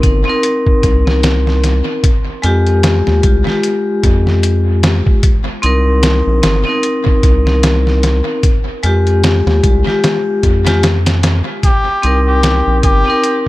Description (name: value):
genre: trip hop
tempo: 75 BPM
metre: 4/4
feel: swing 58% on 16ths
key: C minor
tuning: A4 = 443 Hz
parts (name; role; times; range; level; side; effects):
- vibraphone with hard mallets; accompaniment; 0.0-13.5 s; Ab3 to Bb4; -16 LUFS; left 1 dB; tremolo, tape echo
- round analog bass; bass; 0.0-13.0 s; G1 to F2; -13 LUFS; equal; none
- trip hop sampler-style drum kit; drums; 0.0-13.5 s; hi-hat, kick drum, snare drum; -14 LUFS; equal; studio ambience, dub echo
- trumpet with cup mute; melody; 11.6-13.4 s; G4; -15 LUFS; left 1 dB; vintage 12-bit sampler grit, tape echo
room: small room ambience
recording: echo-heavy mix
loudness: -10 LUFS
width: side -18 dB against mid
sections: 0.0-13.5 A section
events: none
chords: 0.0 Cm7; 2.0 Fmadd9; 5.2 Cm7; 8.4 Fmadd9; 11.6 Cm7